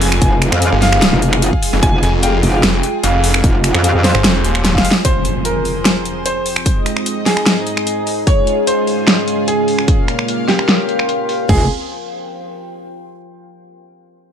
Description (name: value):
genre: heavy wobble dubstep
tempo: 149 BPM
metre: 4/4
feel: half-time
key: F minor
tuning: A4 = 443 Hz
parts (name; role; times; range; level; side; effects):
- clear concert grand piano; melody; 0.0-11.6 s; G4 to Ab5; -21 LUFS; right 1 dB; ping-pong delay
- lush unison pad; sustained chords; 0.0-11.7 s; F2 to F5; -23 LUFS; equal; chorus, sidechain pumping
- snarling distorted saw bass; bass; 0.0-4.8 s; Eb1 to G1; -15 LUFS; equal; distortion, overdrive
- dubstep drum kit; drums; 0.0-11.4 s; finger snaps, hi-hat, snare drum; -16 LUFS; equal; low-pass filter on hats, small room ambience, low-pass filter on snare
- deep dark ambient pad; texture; 0.0-13.1 s; Ab3 to C6; -23 LUFS; equal; chorus, built-in reverb, sidechain pumping
- metallic wobble bass; bass; 0.2-4.1, 11.5-11.7 s; F1 to F2; -14 LUFS; equal; chorus, overdrive
- dubstep drum kit; drums; 0.2-11.6 s; crash cymbal, kick drum, toms; -15 LUFS; equal; small room ambience
- warm brass ensemble; stabs; 0.6-4.9 s; Ab3 to F5; -23 LUFS; left 2 dB; ping-pong delay
- impact; sound effects; 5.0-6.7 s; none; -23 LUFS; equal; none
room: little or no reverb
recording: none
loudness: -12 LUFS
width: side -8 dB against mid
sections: 0.0-5.0 A section; 5.0-11.5 B section; 11.5-13.1 C section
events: drop 0.0-5.0; drum fill 4.6-5.0; impact 5.0-6.7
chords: 0.0 Fmadd9; 5.0 Fm; 6.7 Ab; 8.3 Db/Ab; 9.9 Bbm; 11.5 Fm